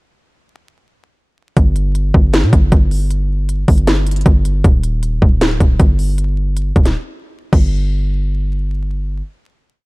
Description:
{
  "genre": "hip hop, trap",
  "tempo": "156 BPM",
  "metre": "4/4",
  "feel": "half-time",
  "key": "unclear",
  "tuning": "A4 = 437 Hz",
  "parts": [
    { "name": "hard-hitting 808-style bass", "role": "bass", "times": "1.6-9.2 s", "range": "D1 to Bb2", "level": "-15 LUFS", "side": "equal", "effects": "none" },
    { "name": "trap drum kit", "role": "drums", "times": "1.6-7.6 s", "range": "crash cymbal, hi-hat, kick drum, snare drum", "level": "-12 LUFS", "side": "equal", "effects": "none" }
  ],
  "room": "little or no reverb",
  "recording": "dark, warm production, vinyl crackle",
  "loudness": "-12 LUFS",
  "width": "side -25 dB against mid",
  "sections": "1.6-7.7 hook; 7.7-9.9 final hit",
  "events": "silent gap 7.0-7.7",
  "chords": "none"
}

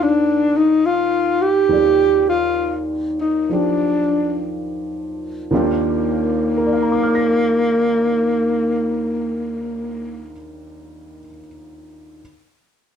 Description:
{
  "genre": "jazz ballad",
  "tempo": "57-74 BPM",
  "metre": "4/4",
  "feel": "swing 67% on 8ths",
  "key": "Eb major",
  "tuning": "A4 = 440 Hz",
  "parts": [
    { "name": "breathy alto saxophone", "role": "melody", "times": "0.0-10.3 s", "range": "Bb3 to G4", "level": "-17 LUFS", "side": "equal", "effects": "none" },
    { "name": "warm upright piano", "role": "accompaniment", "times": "0.0-12.2 s", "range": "Eb2 to Bb6", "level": "-23 LUFS", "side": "right 1 dB", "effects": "none" }
  ],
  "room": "wet club reverb, RT60 0.5 s",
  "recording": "heard from further back in the room",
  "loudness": "-16 LUFS",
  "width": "side -8 dB against mid",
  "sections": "0.0-5.5 A section; 5.5-9.7 B section",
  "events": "slowing down 0.0-5.5",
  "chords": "0.0 Ebmaj9"
}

